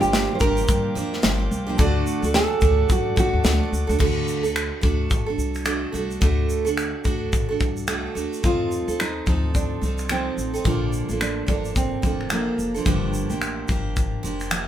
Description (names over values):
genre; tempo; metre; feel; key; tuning
acoustic pop; 108 BPM; 4/4; swing 60% on 16ths; unclear; A4 = 440 Hz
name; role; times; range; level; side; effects
nylon-string guitar; melody; 0.0-3.7, 8.5-12.7 s; Bb3 to C5; -25 LUFS; right 2 dB; none
picked steel-string acoustic guitar; accompaniment; 0.0-14.7 s; G2 to A4; -26 LUFS; right 3 dB; none
warm grand piano; accompaniment; 0.0-4.0 s; A3 to D5; -35 LUFS; left 2 dB; none
tonewheel organ; sustained chords; 0.0-4.0 s; Bb3 to D6; -34 LUFS; equal; stopped rotary speaker
upright bass; bass; 0.0-14.7 s; F1 to G2; -26 LUFS; left 1 dB; none
modern studio drum kit; drums; 0.0-14.7 s; crash cymbal, finger snaps, kick drum, shaker, snare drum; -24 LUFS; left 1 dB; none
room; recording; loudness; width
moderate studio ambience, RT60 0.5 s; band playing live in one room; -20 LUFS; side -11 dB against mid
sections
0.0-4.0 A section; 4.0-8.4 B section; 8.4-14.7 C section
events
none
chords
0.0 Gm7; 1.8 D; 8.4 F7; 10.7 Bbmaj7